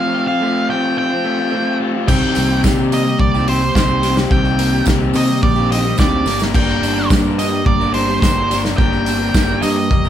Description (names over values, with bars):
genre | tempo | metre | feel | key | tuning
indie rock | 108 BPM | 4/4 | straight | unclear | A4 = 440 Hz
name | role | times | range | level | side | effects
octave-fuzz lead guitar | melody | 0.0-10.1 s | C5 to G5 | -20 LUFS | right 2 dB | distortion
raw garage guitar | riff | 0.0-10.1 s | G3 to Bb4 | -19 LUFS | left 4 dB | overdrive
twelve-string electric guitar | riff | 0.0-10.1 s | Eb3 to G4 | -23 LUFS | right 5 dB | none
growling fingered electric bass | bass | 2.1-10.1 s | F1 to C3 | -20 LUFS | equal | overdrive
loose indie drum kit | drums | 2.1-10.0 s | crash cymbal, hi-hat, kick drum, snare drum | -18 LUFS | equal | none
tambourine | percussion | 2.1-10.1 s | none | -34 LUFS | right 7 dB | none
room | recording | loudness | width
moderate studio reverb, RT60 0.6 s | band playing live in one room | -13 LUFS | side -10 dB against mid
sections
0.0-2.1 A section; 2.1-10.1 B section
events
break 0.0-2.1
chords
0.0 Fadd9; 2.1 Cm7; 6.3 Gm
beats
0.42 0.97 1.53 | 2.09 2.64 3.20 3.75 | 4.31 4.87 5.43 5.99 | 6.55 7.11 7.67 8.23 | 8.79 9.35 9.91